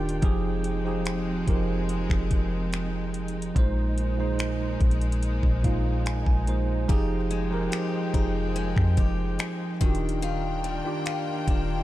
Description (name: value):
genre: contemporary R&B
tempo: 72 BPM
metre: 4/4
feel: straight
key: F dorian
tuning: A4 = 441 Hz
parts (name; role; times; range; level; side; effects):
- bell-like tine electric piano; accompaniment; 0.0-11.8 s; Bb2 to Ab5; -29 LUFS; right 2 dB; wide subtle chorus
- rich studio string section; sustained chords; 0.0-11.8 s; Eb3 to G5; -35 LUFS; left 3 dB; none
- soft 808-style bass; bass; 0.0-11.8 s; Eb1 to F2; -28 LUFS; equal; none
- smooth R&B drum kit; drums; 0.1-11.7 s; finger snaps, hi-hat, kick drum; -26 LUFS; equal; none
- picked swing-style acoustic guitar; arpeggios; 6.9-11.8 s; Eb3 to G4; -35 LUFS; left 10 dB; tape echo
room: little or no reverb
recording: dark, warm production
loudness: -24 LUFS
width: side -15 dB against mid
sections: 0.0-11.8 A section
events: tine electric piano fill 5.2-6.9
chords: 0.2 Fm9; 3.6 Bb9sus4; 6.9 Fm9; 9.8 Ebmaj9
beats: | 0.23 1.06 1.89 2.73 | 3.56 4.39 5.23 6.06 | 6.89 7.73 8.56 9.39 | 10.23 11.06